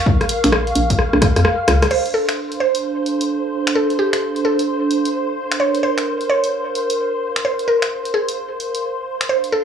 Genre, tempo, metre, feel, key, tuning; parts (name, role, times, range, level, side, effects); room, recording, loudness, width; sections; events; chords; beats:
UK garage, two-step garage; 130 BPM; 4/4; swing 64% on 16ths; A4 = 439 Hz
soft string machine; sustained chords; 0.0-9.6 s; C5 to C6; -25 LUFS; right 1 dB; ensemble chorus, sidechain pumping
warbly tape-like pad; texture; 0.0-9.6 s; D4 to Db6; -22 LUFS; right 1 dB; chorus, built-in reverb, sidechain pumping
electronic kick drum; drums; 0.1-1.3 s; -17 LUFS; equal
punchy analog drum machine; drums; 0.2-9.5 s; crash cymbal, finger snaps, hi-hat, rim click; -21 LUFS; left 1 dB
hollow knocking FM bass; bass; 0.4-1.9 s; Bb1 to F2; -16 LUFS; equal; tube saturation, sidechain pumping
mallet-like synth pluck; melody; 1.9-9.6 s; G4 to C#5; -20 LUFS; right 2 dB; chorus, analog delay
light reverb; dry, gritty hardware recording, transformer saturation, studio ambience; -16 LUFS; side -7 dB against mid
0.0-1.9 A section; 1.9-9.6 B section
drum fill 1.0-1.9; band accent 1.8
0.0 Bbm; 1.9 Dm7
| 0.06 0.53 0.99 1.45 | 1.91 2.37 2.83 3.29 | 3.76 4.22 4.68 5.14 | 5.60 6.06 6.53 6.99 | 7.45 7.91 8.37 8.83 | 9.29